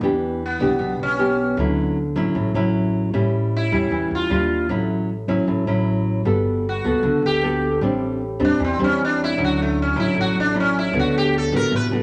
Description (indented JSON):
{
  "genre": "bossa nova",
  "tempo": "154 BPM",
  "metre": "4/4",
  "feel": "straight",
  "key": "D major",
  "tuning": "A4 = 439 Hz",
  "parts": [
    { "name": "nylon-string guitar", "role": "accompaniment", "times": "0.0-12.0 s", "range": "A2 to A4", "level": "-22 LUFS", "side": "equal", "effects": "none" },
    { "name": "upright bass", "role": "bass", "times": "0.0-12.0 s", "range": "G1 to E2", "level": "-29 LUFS", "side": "equal", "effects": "none" },
    { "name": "sitar", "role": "melody", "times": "0.5-11.9 s", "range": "A3 to B4", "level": "-25 LUFS", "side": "equal", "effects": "none" }
  ],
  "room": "wet large studio reverb, RT60 1.0 s",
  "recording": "none",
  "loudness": "-21 LUFS",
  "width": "mono",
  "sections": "0.0-12.0 A section",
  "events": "sitar solo 0.0-12.0",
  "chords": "0.0 Em7; 1.6 Dmaj9; 3.1 A7; 4.3 Ebmaj9; 4.7 A6; 6.3 Gmaj9; 7.8 Am7; 9.4 Dmaj9; 10.9 D6",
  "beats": "| 0.02 0.41 0.80 1.19 | 1.58 1.97 2.36 2.75 | 3.14 3.53 3.92 4.31 | 4.70 5.09 5.48 5.87 | 6.26 6.65 7.04 7.43 | 7.82 8.21 8.60 8.98 | 9.38 9.76 10.15 10.54 | 10.93 11.32 11.71"
}